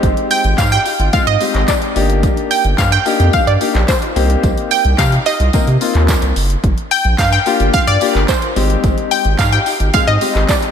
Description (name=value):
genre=dance-pop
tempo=109 BPM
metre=4/4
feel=straight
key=unclear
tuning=A4 = 439 Hz
part: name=clear concert grand piano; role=accompaniment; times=0.0-10.7 s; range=Ab3 to Bb4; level=-19 LUFS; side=left 5 dB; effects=sidechain pumping
part: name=round analog bass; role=bass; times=0.0-10.4 s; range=Gb1 to C3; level=-15 LUFS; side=equal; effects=sidechain pumping
part: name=deep house drum kit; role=drums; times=0.0-10.7 s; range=handclaps, hi-hat, kick drum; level=-18 LUFS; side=equal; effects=none
part: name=tambourine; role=percussion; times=0.0-10.6 s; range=none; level=-31 LUFS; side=right 12 dB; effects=none
part: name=analog pluck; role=melody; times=0.3-10.7 s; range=C5 to G5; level=-16 LUFS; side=right 1 dB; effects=chorus, diffuse ambient delay
room=moderate lush hall reverb, RT60 2.8 s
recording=dreamy mix soaked in reverb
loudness=-12 LUFS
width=side -8 dB against mid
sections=0.0-10.7 A section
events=none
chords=0.0 Abmaj7; 2.0 Ebmaj7/G; 4.2 Cm7; 6.6 Gm7; 8.6 Abmaj7